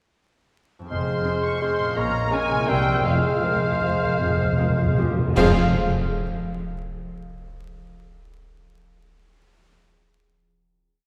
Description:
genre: classical, orchestral ballroom waltz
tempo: 147-182 BPM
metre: 3/4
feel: rubato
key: F minor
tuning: A4 = 440 Hz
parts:
  - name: concert harp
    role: arpeggios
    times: 0.8-5.6 s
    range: F2 to F5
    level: -33 LUFS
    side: equal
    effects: none
  - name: muted chamber violin section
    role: melody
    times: 0.9-5.6 s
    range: F5 to Db6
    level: -33 LUFS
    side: equal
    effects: none
  - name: clear oboe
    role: second line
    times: 0.9-5.5 s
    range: C5 to Db5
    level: -33 LUFS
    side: equal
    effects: none
  - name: mellow flute section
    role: second line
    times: 0.9-5.6 s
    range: E6 to F6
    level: -34 LUFS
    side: equal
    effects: none
  - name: muted chamber violin section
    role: second line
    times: 0.9-5.6 s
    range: F4 to Db6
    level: -38 LUFS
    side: equal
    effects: none
  - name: warm clarinet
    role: second line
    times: 0.9-5.5 s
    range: F4 to C5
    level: -33 LUFS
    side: equal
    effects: none
  - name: warm bassoon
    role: accompaniment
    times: 0.9-5.5 s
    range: F3 to Ab3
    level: -31 LUFS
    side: equal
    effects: none
  - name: muted chamber double bass section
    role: bass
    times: 0.9-5.6 s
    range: F1 to C2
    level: -31 LUFS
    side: equal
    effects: none
  - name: muted symphonic cello section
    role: bass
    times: 0.9-5.6 s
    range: F2 to C3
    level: -32 LUFS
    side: equal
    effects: none
  - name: muted chamber viola section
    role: accompaniment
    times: 1.2-5.6 s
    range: C4 to Bb4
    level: -34 LUFS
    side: equal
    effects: none
  - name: mellow French horn section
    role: sustained chords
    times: 1.3-5.5 s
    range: Ab3 to Ab4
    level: -36 LUFS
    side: equal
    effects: none
  - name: cymbal swell, clash cymbals and concert bass drum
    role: percussion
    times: 3.0-6.1 s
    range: none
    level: -34 LUFS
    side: equal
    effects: none
  - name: timpani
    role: percussion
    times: 3.1-5.5 s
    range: F2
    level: -28 LUFS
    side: equal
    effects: none
room: wet concert hall reverb, RT60 2.4 s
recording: heard from further back in the room, vinyl crackle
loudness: -22 LUFS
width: mono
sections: 0.9-5.4 A section; 5.4-6.5 final chord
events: timpani fill 3.0-5.4; band accent 5.4-5.7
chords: 0.9 Fm; 2.0 Bbm7; 2.7 C7; 3.0 Fm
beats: | 0.91 1.26 1.62 | 1.96 2.31 2.69 | 3.05 3.43 3.82 | 4.20 4.58 4.98 | 5.36 5.72

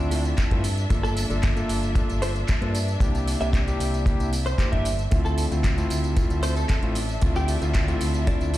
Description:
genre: nu-disco, nu disco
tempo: 114 BPM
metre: 4/4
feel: straight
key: D minor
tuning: A4 = 436 Hz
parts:
  - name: direct-recorded clean electric guitar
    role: melody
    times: 0.0-8.6 s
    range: D4 to E5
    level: -34 LUFS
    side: equal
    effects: ensemble chorus, ping-pong delay
  - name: warm electric grand piano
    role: accompaniment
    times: 0.0-8.6 s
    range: A3 to A4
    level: -29 LUFS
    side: left 1 dB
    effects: sidechain pumping, ping-pong delay
  - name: warm symphonic violin section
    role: sustained chords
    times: 0.0-8.6 s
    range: D4 to E5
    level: -34 LUFS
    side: left 1 dB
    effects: sidechain pumping
  - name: fingered electric bass with an envelope filter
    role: bass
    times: 0.0-8.6 s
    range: G1 to G2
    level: -25 LUFS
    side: equal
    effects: none
  - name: house drum kit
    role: drums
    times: 0.1-8.6 s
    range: handclaps, hi-hat, tambourine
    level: -34 LUFS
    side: right 2 dB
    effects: none
  - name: kick drum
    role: drums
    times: 0.4-8.4 s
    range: none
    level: -22 LUFS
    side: equal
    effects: none
room: small room ambience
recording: played on a big sound system in a bare room, stone room reverb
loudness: -21 LUFS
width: side -15 dB against mid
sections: 0.0-8.6 A section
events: none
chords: 0.0 Dm7; 0.6 Gm7; 3.0 C7; 5.1 Dm7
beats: 0.38 | 0.90 1.43 1.96 2.48 | 3.01 3.54 4.06 4.59 | 5.11 5.64 6.17 6.69 | 7.22 7.75 8.27

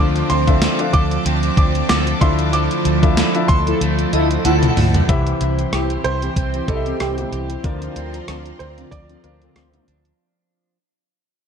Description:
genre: 1980s-style pop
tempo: 94 BPM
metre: 4/4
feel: swing 55% on 16ths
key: D minor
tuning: A4 = 442 Hz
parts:
  - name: clear concert grand piano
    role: melody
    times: 0.0-9.8 s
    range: G4 to D6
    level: -25 LUFS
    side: right 2 dB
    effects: digital delay
  - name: clear baby grand piano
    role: accompaniment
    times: 0.0-10.2 s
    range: C3 to F5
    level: -25 LUFS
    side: left 6 dB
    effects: none
  - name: cranked stack guitar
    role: accompaniment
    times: 0.0-5.1 s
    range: D3 to D4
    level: -29 LUFS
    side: left 1 dB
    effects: overdrive, wide subtle chorus
  - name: string machine, cellos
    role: sustained chords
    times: 0.0-10.2 s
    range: F3 to D6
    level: -26 LUFS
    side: right 1 dB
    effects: ensemble chorus
  - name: electric guitar at the edge of break-up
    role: riff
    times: 0.0-10.8 s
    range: E3 to A4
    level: -26 LUFS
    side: right 5 dB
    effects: analog chorus, digital delay
  - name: vintage muted fingered electric bass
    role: bass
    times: 0.0-10.1 s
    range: C2 to D2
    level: -21 LUFS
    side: equal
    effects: none
  - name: gated 80s digital drum machine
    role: drums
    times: 0.2-10.2 s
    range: hi-hat, kick drum, rim click, snare drum, tambourine, toms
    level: -18 LUFS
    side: equal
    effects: gated reverb, gated reverb snare
  - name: mellow synth brass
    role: stabs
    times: 3.7-9.9 s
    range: D3 to A4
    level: -24 LUFS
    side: equal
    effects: chorus, phaser, digital delay
  - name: shimmering bell with halo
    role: second line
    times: 4.1-5.0 s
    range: Eb5 to F#5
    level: -27 LUFS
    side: right 3 dB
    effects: ensemble chorus, digital delay
room: light reverb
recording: dark, warm production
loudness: -15 LUFS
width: side -7 dB against mid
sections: 0.0-5.1 A section; 5.1-10.2 B section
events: band accent 2.5-5.1; drum fill 4.4-5.1; fade-out 5.1-10.2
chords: 0.0 Dm7; 2.2 Dmadd9; 5.1 C; 7.6 Bbadd9/D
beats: 0.62 1.26 1.90 | 2.54 3.17 3.81 4.45 | 5.09 5.73 6.36 7.00 | 7.64 8.28 8.92 9.56

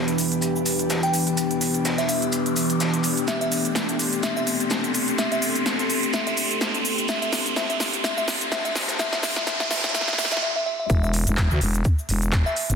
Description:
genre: bass house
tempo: 126 BPM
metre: 4/4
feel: swing 56% on 16ths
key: unclear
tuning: A4 = 440 Hz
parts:
  - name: deep dark ambient pad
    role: sustained chords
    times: 0.0-10.4 s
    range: E3 to A4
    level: -27 LUFS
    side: left 2 dB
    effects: chorus, built-in reverb, sidechain pumping
  - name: riser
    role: sound effects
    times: 0.1-10.4 s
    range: none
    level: -29 LUFS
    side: right 2 dB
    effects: none
  - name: airy breathy pad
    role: texture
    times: 0.0-10.4 s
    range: E3 to C6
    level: -29 LUFS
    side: equal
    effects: chorus, sidechain pumping
  - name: big-room dance drum kit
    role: drums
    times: 0.1-12.8 s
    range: handclaps, hi-hat, shaker, snare drum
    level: -26 LUFS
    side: equal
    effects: overdrive
  - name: shaker and snare drum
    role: drums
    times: 0.2-12.7 s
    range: none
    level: -32 LUFS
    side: left 1 dB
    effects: high-pass filter on snare, high-pass filter on perc, high-pass filter on room
  - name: glassy synth bell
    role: melody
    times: 1.0-12.8 s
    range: E5 to G5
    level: -29 LUFS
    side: left 1 dB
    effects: chorus, vintage 12-bit sampler grit, tape echo
  - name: growling FM bass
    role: bass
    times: 10.9-12.8 s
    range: E1 to D2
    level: -22 LUFS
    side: equal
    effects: tube saturation, sidechain pumping
  - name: electronic kick drum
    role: drums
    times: 10.9-12.4 s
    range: none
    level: -20 LUFS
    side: equal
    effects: none
room: moderate plate reverb, RT60 1.4 s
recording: dense, heavily limited modern master, high-pass filter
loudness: -20 LUFS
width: side -6 dB against mid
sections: 0.0-10.9 A section; 10.9-12.8 B section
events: build-up 0.0-10.9; filter sweep 0.0-10.9; riser 0.1-10.4; drum fill 3.3-10.4; break 10.4-10.9; drop 10.9-12.8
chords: 0.0 Em; 3.3 Amadd9; 10.9 N.C.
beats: 0.42 0.90 | 1.37 1.85 2.33 2.80 | 3.28 3.75 4.23 4.71 | 5.18 5.66 6.14 6.61 | 7.09 7.57 8.04 8.52 | 8.99 9.47 9.95 10.42 | 10.90 11.37 11.85 12.33

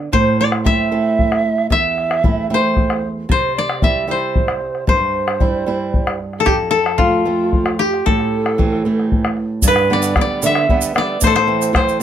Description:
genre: andean folk, Andean ensemble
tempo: 76 BPM (dotted quarters)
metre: 6/8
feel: straight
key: A minor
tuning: A4 = 441 Hz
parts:
  - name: flamenco guitar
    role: accompaniment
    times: 0.0-12.0 s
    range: E2 to E4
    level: -20 LUFS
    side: right 3 dB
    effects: none
  - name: koto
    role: melody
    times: 0.1-12.0 s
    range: F4 to E5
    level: -18 LUFS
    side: left 4 dB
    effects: none
  - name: polished pan flute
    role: second line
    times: 0.1-12.0 s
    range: F4 to E5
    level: -21 LUFS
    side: right 4 dB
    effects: none
  - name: bombo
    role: percussion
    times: 0.1-11.9 s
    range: none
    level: -18 LUFS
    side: left 1 dB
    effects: none
  - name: tube shaker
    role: percussion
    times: 9.6-11.9 s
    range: none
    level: -22 LUFS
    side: right 6 dB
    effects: none
room: moderate studio reverb, RT60 0.5 s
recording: close, detailed microphones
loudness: -14 LUFS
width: side -10 dB against mid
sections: 0.0-9.6 A section; 9.6-12.0 B section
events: none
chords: 0.1 Am; 3.3 C; 6.5 F; 8.0 Am; 9.6 G; 11.2 Am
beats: | 0.12 0.91 | 1.70 2.50 | 3.29 4.08 | 4.88 5.67 | 6.46 7.26 | 8.05 8.84 | 9.63 10.43 | 11.22 12.01

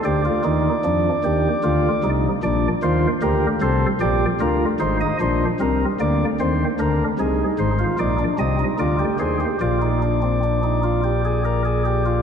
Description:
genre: classical, baroque-style 3-part fugue for pipe organ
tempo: 50 BPM (dotted quarters)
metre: 12/8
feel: straight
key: unclear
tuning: A4 = 441 Hz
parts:
  - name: chamber organ, flutes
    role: solo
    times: 0.0-12.2 s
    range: Ab1 to Eb5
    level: -18 LUFS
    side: equal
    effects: none
room: wet church reverb, RT60 3.5 s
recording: dark, warm production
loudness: -18 LUFS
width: side -7 dB against mid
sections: 0.0-12.2 A section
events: none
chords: 0.1 Dm; 2.4 Gm7/Bb; 4.8 Fm7/Ab; 9.6 Bb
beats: | 0.05 1.24 2.43 3.62 | 4.80 6.00 7.19 8.39 | 9.61 10.84 12.06

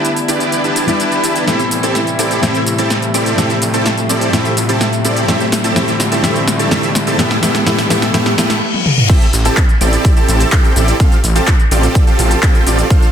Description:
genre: EDM, festival progressive house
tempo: 126 BPM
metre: 4/4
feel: straight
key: A minor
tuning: A4 = 444 Hz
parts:
  - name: fingerpicked steel-string acoustic guitar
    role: accompaniment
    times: 0.0-8.6 s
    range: A2 to G4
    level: -18 LUFS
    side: left 2 dB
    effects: sidechain pumping, digital delay
  - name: warm chamber string section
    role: sustained chords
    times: 0.0-8.6 s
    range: C3 to E4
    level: -22 LUFS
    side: right 1 dB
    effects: sidechain pumping, low-pass filter
  - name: dense compressed supersaw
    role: riff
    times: 0.0-13.1 s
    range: B3 to A5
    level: -16 LUFS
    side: right 1 dB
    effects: sidechain pumping, low-pass filter, digital delay
  - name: big-room dance drum kit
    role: drums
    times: 0.0-13.1 s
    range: crash cymbal, handclaps, hi-hat, shaker, snare drum, toms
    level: -18 LUFS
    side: equal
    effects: soft clipping on snare
  - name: riser and reverse cymbal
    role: sound effects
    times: 0.5-9.1 s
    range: none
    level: -23 LUFS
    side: equal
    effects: none
  - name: wide detuned saw bass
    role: bass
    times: 0.3-12.8 s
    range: A1 to E2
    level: -18 LUFS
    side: equal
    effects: chorus, sidechain pumping, high-pass filter
  - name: electronic kick drum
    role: drums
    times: 9.1-13.0 s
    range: none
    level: -11 LUFS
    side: equal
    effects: none
room: moderate digital room reverb, RT60 1.1 s, digital ambience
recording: dense, heavily limited modern master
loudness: -11 LUFS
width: side -8 dB against mid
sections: 0.0-9.1 A section; 9.1-13.1 B section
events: build-up 0.0-9.1; drum fill 1.5-8.6, 8.7-9.1; reverse cymbal 8.1-9.1; drop 9.1-13.1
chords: 0.0 Em7; 1.5 Am7; 3.4 Fadd9/A; 5.3 Dm7; 7.2 Em7; 9.1 Am7; 11.0 Fadd9/A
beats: 0.05 0.52 1.00 | 1.48 1.95 2.43 2.90 | 3.38 3.86 4.33 4.81 | 5.29 5.76 6.24 6.71 | 7.19 7.67 8.14 8.62 | 9.09 9.57 10.05 10.52 | 11.00 11.47 11.95 12.43 | 12.90

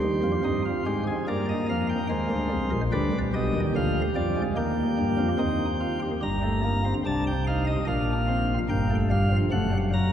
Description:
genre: classical, baroque-style 4-part fugue for pipe organ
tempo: 73 BPM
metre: 4/4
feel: straight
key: C minor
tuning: A4 = 440 Hz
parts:
  - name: chamber organ, sparkling flutes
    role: solo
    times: 0.0-10.1 s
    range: F#1 to Bb5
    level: -23 LUFS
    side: equal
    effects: none
room: wet cathedral reverb, RT60 4.7 s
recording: heard from further back in the room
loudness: -23 LUFS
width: side -9 dB against mid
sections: 0.0-10.1 A section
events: none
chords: 0.0 Cm; 1.3 Eb; 2.9 G7; 4.6 Cm/Eb; 6.2 Gm; 7.9 Bb; 9.5 F#m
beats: 0.44 1.27 2.10 | 2.93 3.76 4.58 5.41 | 6.24 7.06 7.88 8.70 | 9.52

